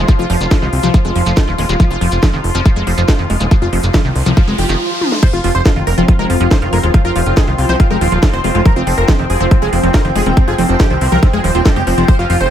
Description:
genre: psychedelic trance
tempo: 140 BPM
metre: 4/4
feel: straight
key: F minor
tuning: A4 = 440 Hz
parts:
  - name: formant-sweep wobble bass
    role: second line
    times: 0.0-1.4, 6.0-7.9 s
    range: F3 to C4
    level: -32 LUFS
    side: right 2 dB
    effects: none
  - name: bubbling stepped-filter texture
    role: sustained chords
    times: 0.0-12.5 s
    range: F3 to F4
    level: -21 LUFS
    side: left 1 dB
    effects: chorus, built-in reverb, vintage 12-bit sampler grit, sidechain pumping
  - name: wide unison pluck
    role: riff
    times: 0.0-12.3 s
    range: Eb3 to G4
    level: -20 LUFS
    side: moving between left 4 dB and right 3 dB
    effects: auto-pan, sidechain pumping, tape echo
  - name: fat analog bass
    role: bass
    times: 0.0-12.5 s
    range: Eb1 to C2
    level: -16 LUFS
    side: equal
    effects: none
  - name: granular cloud pad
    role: texture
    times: 0.0-12.5 s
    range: F4 to C6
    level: -25 LUFS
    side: right 1 dB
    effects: built-in reverb, sidechain pumping
  - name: electronic kick drum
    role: drums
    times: 0.1-12.2 s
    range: none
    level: -11 LUFS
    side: equal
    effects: none
  - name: techno drum kit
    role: drums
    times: 0.1-12.5 s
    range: crash cymbal, hi-hat, snare drum, toms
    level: -21 LUFS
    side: right 1 dB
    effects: overdrive
  - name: shekere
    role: percussion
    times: 0.1-4.8 s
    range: none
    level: -28 LUFS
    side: left 1 dB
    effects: none
  - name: riser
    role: sound effects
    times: 3.3-5.2 s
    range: none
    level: -27 LUFS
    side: right 1 dB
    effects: none
  - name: supersaw stab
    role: melody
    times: 5.2-12.5 s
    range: C4 to C5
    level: -19 LUFS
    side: right 1 dB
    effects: phaser, sidechain pumping, tape echo
room: little or no reverb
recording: none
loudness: -10 LUFS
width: side -10 dB against mid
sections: 0.0-5.2 A section; 5.2-12.5 B section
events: riser 3.3-5.2; stop 4.8-5.2; drum fill 5.0; drop 5.2-12.5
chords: 0.0 F5

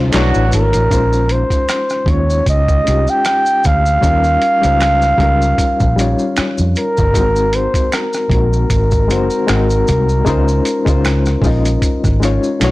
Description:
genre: R&B, neo-soul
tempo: 77 BPM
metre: 4/4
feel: swing 55% on 16ths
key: unclear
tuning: A4 = 440 Hz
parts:
  - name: breathy flugelhorn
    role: melody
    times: 0.0-12.6 s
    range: Ab4 to G5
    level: -17 LUFS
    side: right 1 dB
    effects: none
  - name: reed electric piano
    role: accompaniment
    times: 0.0-12.7 s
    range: G3 to G5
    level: -19 LUFS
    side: left 4 dB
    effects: fast tremolo
  - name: warm studio string section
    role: sustained chords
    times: 0.0-0.9 s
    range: Db3 to F4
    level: -29 LUFS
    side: right 2 dB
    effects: none
  - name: vintage muted fingered electric bass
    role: bass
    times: 0.0-12.7 s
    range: Gb1 to F2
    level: -15 LUFS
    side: equal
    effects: transformer saturation
  - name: clear horn section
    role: stabs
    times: 0.1-0.5 s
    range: F#3 to F#4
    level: -21 LUFS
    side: right 1 dB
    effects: none
  - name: boom bap sampler-style drum kit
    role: drums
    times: 0.1-12.7 s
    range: handclaps, hi-hat, kick drum, rim click, snare drum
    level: -18 LUFS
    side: equal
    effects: soft clipping on snare
  - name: finger snaps and maracas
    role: percussion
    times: 0.1-12.7 s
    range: none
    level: -27 LUFS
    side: right 2 dB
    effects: none
room: light reverb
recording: blown-out, overdriven recording, overdrive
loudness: -12 LUFS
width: side -18 dB against mid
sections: 0.9-12.7 A section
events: none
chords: 0.1 Bm11; 0.9 Bbm11; 4.0 Eb9; 7.1 Ab9; 9.5 Ab7; 10.3 Dbmaj9

